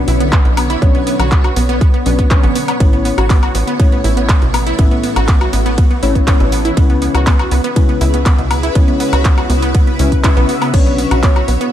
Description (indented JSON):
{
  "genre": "progressive house",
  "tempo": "121 BPM",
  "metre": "4/4",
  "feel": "straight",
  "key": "B minor",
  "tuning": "A4 = 439 Hz",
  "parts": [
    { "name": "shimmering ambient pad", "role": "sustained chords", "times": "0.0-11.7 s", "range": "C#3 to E5", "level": "-23 LUFS", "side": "equal", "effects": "chorus, built-in reverb, phaser, sidechain pumping" },
    { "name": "wide unison pluck", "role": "arpeggios", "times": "0.0-11.7 s", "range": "B2 to B4", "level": "-19 LUFS", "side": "right 2 dB", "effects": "sidechain pumping, tape echo" },
    { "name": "deep mellow chord stab", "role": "stabs", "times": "0.0-11.7 s", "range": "A2 to E5", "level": "-20 LUFS", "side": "left 4 dB", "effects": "chorus, sidechain pumping, tape echo" },
    { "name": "tight sequencer bass", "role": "bass", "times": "0.1-11.6 s", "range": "A1 to C#2", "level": "-17 LUFS", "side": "equal", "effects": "sidechain pumping" },
    { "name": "deep house drum kit", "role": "drums", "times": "0.1-11.7 s", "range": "crash cymbal, handclaps, hi-hat, ride cymbal, woodblock", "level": "-21 LUFS", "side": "left 2 dB", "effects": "overdrive, sidechain pumping on hats, sidechain pumping on cymbals, sidechain pumping on perc" },
    { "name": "electronic kick drum", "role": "drums", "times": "0.3-11.3 s", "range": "none", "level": "-12 LUFS", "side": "equal", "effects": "none" },
    { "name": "wide unison lead", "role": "melody", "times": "10.7-11.7 s", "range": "C#5", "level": "-22 LUFS", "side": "equal", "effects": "analog chorus, sidechain pumping, tape echo" }
  ],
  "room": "light reverb, digital ambience",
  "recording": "dark, warm production",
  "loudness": "-10 LUFS",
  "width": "side -11 dB against mid",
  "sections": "0.0-11.7 A section",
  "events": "none",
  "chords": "0.0 Bmadd9; 2.8 A; 6.8 C#m7; 10.7 Bmadd9",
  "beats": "0.32 | 0.82 1.32 1.81 2.31 | 2.80 3.30 3.79 4.29 | 4.79 5.28 5.78 6.28 | 6.77 7.27 7.76 8.26 | 8.75 9.25 9.75 10.24 | 10.74 11.23"
}